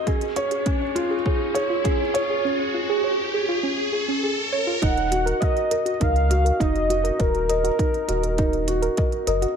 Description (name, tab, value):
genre	piano and strings electronica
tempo	101 BPM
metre	4/4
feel	straight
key	unclear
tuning	A4 = 440 Hz
part	felt-muted upright piano	riff	0.0-9.6 s	Db4 to Eb5	-25 LUFS	equal	ping-pong delay
part	riser	sound effects	0.0-4.8 s	none	-28 LUFS	left 1 dB	none
part	soft round pluck	arpeggios	0.1-9.5 s	Db4 to Eb5	-27 LUFS	right 1 dB	chorus, sidechain pumping, ping-pong delay
part	electronic hi-hat	drums	0.1-9.5 s	none	-35 LUFS	right 6 dB	none
part	electronic kick drum	drums	0.1-9.1 s	none	-23 LUFS	equal	overdrive
part	warm velvety synth lead	melody	4.8-9.3 s	Bb4 to Gb5	-25 LUFS	equal	chorus
part	warm sub bass	bass	4.8-9.5 s	Eb1 to Db2	-24 LUFS	equal	sidechain pumping
room	moderate lush hall reverb, RT60 1.9 s, digital ambience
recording	none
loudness	-20 LUFS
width	side -7 dB against mid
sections	0.0-4.8 A section; 4.8-9.6 B section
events	build-up 0.0-4.8; riser 0.0-4.8; filter sweep on synth arpeggio sound 0.0-4.8; drop 4.8-9.6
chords	0.1 Db; 4.8 Ebm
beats	| 0.07 0.66 1.26 1.85 | 2.45 3.04 3.63 4.23 | 4.82 5.42 6.01 6.61 | 7.20 7.79 8.39 8.98